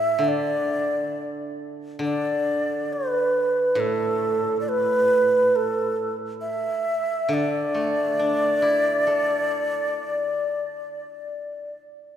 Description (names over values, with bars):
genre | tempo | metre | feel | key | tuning
chinese traditional, Chinese chamber ensemble | 68 BPM | 4/4 | rubato | unclear | A4 = 441 Hz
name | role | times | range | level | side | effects
breathy xiao | melody | 0.0-11.8 s | A4 to E5 | -22 LUFS | right 1 dB | none
steel-string zither | accompaniment | 0.0-10.9 s | A2 to A4 | -29 LUFS | left 1 dB | none
room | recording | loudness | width
wet church reverb, RT60 3.0 s | recorded in a church or concert hall | -21 LUFS | side -10 dB against mid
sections
0.0-12.2 A section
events
none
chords
none